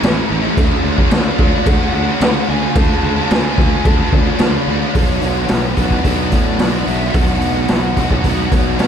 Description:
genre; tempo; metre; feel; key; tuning
rock, shoegaze and dream pop; 110 BPM; 4/4; straight; unclear; A4 = 439 Hz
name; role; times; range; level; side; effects
overdriven electric guitar; riff; 0.0-8.9 s; A2 to F#4; -17 LUFS; equal; analog chorus
fuzz fingered electric bass; bass; 0.0-8.9 s; A1 to B2; -20 LUFS; equal; overdrive
raw garage drum kit; drums; 0.0-8.9 s; crash cymbal, hi-hat, kick drum, snare drum; -16 LUFS; equal; none
fuzz lead guitar; melody; 1.1-8.9 s; C#5 to A5; -26 LUFS; left 2 dB; distortion, ping-pong delay
room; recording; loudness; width
moderate plate reverb, RT60 2.7 s; dreamy mix soaked in reverb; -12 LUFS; side -8 dB against mid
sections
0.0-5.0 A section; 5.0-8.9 B section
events
none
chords
0.0 A; 0.6 D; 5.0 Bmadd9

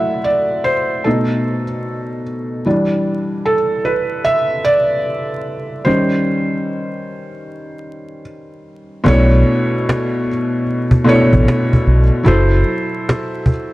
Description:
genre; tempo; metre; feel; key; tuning
lo-fi hip hop; 75 BPM; 4/4; swing 63% on 16ths; B minor; A4 = 439 Hz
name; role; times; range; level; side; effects
felt-muted upright piano; accompaniment; 0.0-13.7 s; B2 to F#5; -16 LUFS; equal; none
deep dub fingered electric bass; bass; 9.1-12.6 s; F#1 to B1; -12 LUFS; equal; none
cajon; drums; 9.1-13.7 s; none; -14 LUFS; equal; vintage 12-bit sampler grit
room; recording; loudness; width
light reverb, small room ambience; vinyl crackle; -14 LUFS; side -18 dB against mid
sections
0.0-9.1 A section; 9.1-13.7 B section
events
felt piano solo 0.0-9.1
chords
0.0 F#m7b5; 1.1 B7; 2.7 Em7; 5.9 D#6; 9.1 Bm11; 12.3 F#m7b5

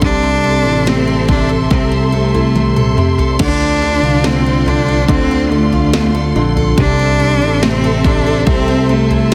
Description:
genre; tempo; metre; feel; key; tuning
pop ballad; 71 BPM; 4/4; straight; unclear; A4 = 440 Hz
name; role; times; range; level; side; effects
clear cello; melody; 0.0-9.3 s; A3 to D4; -19 LUFS; equal; none
clear upright piano; accompaniment; 0.0-9.3 s; C3 to D3; -21 LUFS; equal; none
warm studio string section; sustained chords; 0.0-9.3 s; F4 to C6; -24 LUFS; equal; none
picked steel-string acoustic guitar; arpeggios; 0.0-9.3 s; C3 to A4; -24 LUFS; equal; tape echo
fingered electric bass; bass; 0.0-9.3 s; A1 to D2; -19 LUFS; equal; none
house drum kit; drums; 0.0-9.3 s; crash cymbal, kick drum, snare drum, toms; -20 LUFS; equal; none
room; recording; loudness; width
light reverb, studio ambience; dense, heavily limited modern master; -13 LUFS; mono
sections
0.0-9.3 A section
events
drum fill 2.6-3.4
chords
0.0 Am; 3.4 Dm7; 6.8 Am

